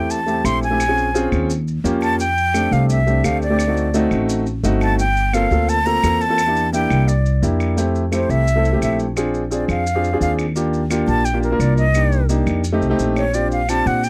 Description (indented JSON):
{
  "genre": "Afro-Cuban jazz",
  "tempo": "172 BPM",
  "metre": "4/4",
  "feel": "straight",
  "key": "D minor, F major from 7.8 s",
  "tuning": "A4 = 442 Hz",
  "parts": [
    { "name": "breathy concert flute", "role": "melody", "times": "0.0-14.1 s", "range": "Bb4 to C6", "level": "-22 LUFS", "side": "equal", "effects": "none" },
    { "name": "warm grand piano", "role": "accompaniment", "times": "0.0-14.0 s", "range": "A3 to Bb4", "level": "-23 LUFS", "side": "equal", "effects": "none" },
    { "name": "upright bass", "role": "bass", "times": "0.0-14.1 s", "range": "G1 to Bb2", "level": "-22 LUFS", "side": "equal", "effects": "none" },
    { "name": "maracas", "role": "percussion", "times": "0.1-14.1 s", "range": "none", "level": "-36 LUFS", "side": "equal", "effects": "none" },
    { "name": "claves", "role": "percussion", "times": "0.4-13.9 s", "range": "none", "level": "-36 LUFS", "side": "equal", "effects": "none" }
  ],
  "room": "little or no reverb",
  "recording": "dry, close 1970s-style studio recording",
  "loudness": "-18 LUFS",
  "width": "mono",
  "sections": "0.0-7.8 A section; 7.8-14.1 B section",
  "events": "flute solo 7.8-14.1",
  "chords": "0.0 Am7; 0.8 Bbm7; 1.5 Eb9; 2.2 F69; 3.6 D7b9; 5.0 Gm11; 6.4 Em7b5; 7.1 C9; 7.8 Fmaj9; 9.2 Bb9; 10.6 Ebmaj9; 12.0 Cm7; 12.6 F9; 13.3 Bb69"
}